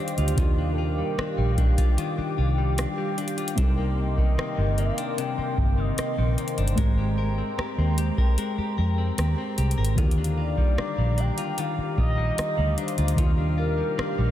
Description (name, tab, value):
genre	contemporary R&B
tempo	75 BPM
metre	4/4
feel	straight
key	Eb major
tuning	A4 = 440 Hz
part	mellow horn-like synth lead	melody	0.0-14.3 s	A4 to G5	-33 LUFS	equal	chorus, phaser, ping-pong delay
part	felt-muted upright piano	accompaniment	0.0-14.3 s	Ab2 to Bb4	-34 LUFS	right 1 dB	none
part	hollow soft pad	sustained chords	0.0-14.3 s	Ab3 to F6	-33 LUFS	right 1 dB	chorus
part	direct-recorded clean electric guitar	arpeggios	0.0-14.3 s	C3 to Bb4	-31 LUFS	left 6 dB	vibrato effect, ping-pong delay
part	booming analog drum machine	drums	0.1-14.2 s	hi-hat, kick drum, rim click	-26 LUFS	equal	none
part	vintage muted fingered electric bass	bass	0.2-14.3 s	G1 to F2	-24 LUFS	equal	none
room	light reverb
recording	none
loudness	-22 LUFS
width	side -12 dB against mid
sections	0.0-14.3 A section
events	none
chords	0.0 Ebmaj9; 3.6 Cm9; 6.8 Abmaj9; 10.0 Ebmaj9